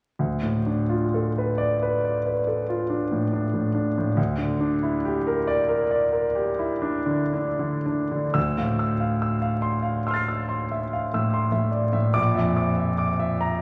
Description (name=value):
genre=classical, impressionist solo piano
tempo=36-48 BPM (dotted quarters)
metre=9/8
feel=rubato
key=D minor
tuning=A4 = 440 Hz
part: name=clear grand piano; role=solo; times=0.2-13.6 s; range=Bb1 to C7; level=-24 LUFS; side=equal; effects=none
room=wet scoring stage reverb, RT60 1.8 s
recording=vinyl crackle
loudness=-24 LUFS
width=mono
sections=0.2-8.4 A section; 8.4-13.6 B section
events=none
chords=0.2 Dm6; 4.2 Gm6/D; 8.4 Dm9; 12.2 Bb(#11)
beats=| 0.20 1.60 2.90 | 4.18 5.47 6.82 | 8.36 9.64 10.93 | 12.18 13.44